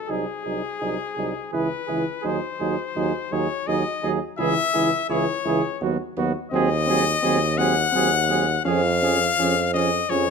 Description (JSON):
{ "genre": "classical, brass quintet", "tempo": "84 BPM", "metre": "3/4", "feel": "straight", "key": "Db major from 6.5 s", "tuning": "A4 = 438 Hz", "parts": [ { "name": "brilliant trumpet", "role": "melody", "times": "0.0-10.3 s", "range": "G#4 to Gb5", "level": "-24 LUFS", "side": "left 7 dB", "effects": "none" }, { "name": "mellow trumpet", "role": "second line", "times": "0.1-10.3 s", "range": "F#4 to G#4", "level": "-29 LUFS", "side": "right 10 dB", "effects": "none" }, { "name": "clear French horn", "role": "accompaniment", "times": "0.1-10.3 s", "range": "B3 to E4", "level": "-29 LUFS", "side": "left 3 dB", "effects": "none" }, { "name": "dark trombone", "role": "accompaniment", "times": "0.1-10.2 s", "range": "E3 to F#3", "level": "-29 LUFS", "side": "right 5 dB", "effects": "none" }, { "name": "clear tuba", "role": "bass", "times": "0.1-10.3 s", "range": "B#1 to F2", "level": "-27 LUFS", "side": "right 4 dB", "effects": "none" } ], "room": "moderate large studio reverb, RT60 1.2 s", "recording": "minimal, uncompressed stereo recording", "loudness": "-20 LUFS", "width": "side -5 dB against mid", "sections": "0.0-10.3 A section", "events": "none", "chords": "0.1 G#7/B#; 1.5 C#m; 2.2 G#7/D#; 4.4 C#m; 5.8 B/D#; 6.5 Ab7/Eb; 8.7 Db/F", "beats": "| 0.10 0.82 1.53 | 2.25 2.97 3.68 | 4.39 5.10 5.82 | 6.52 7.23 7.94 | 8.66 9.38 10.10" }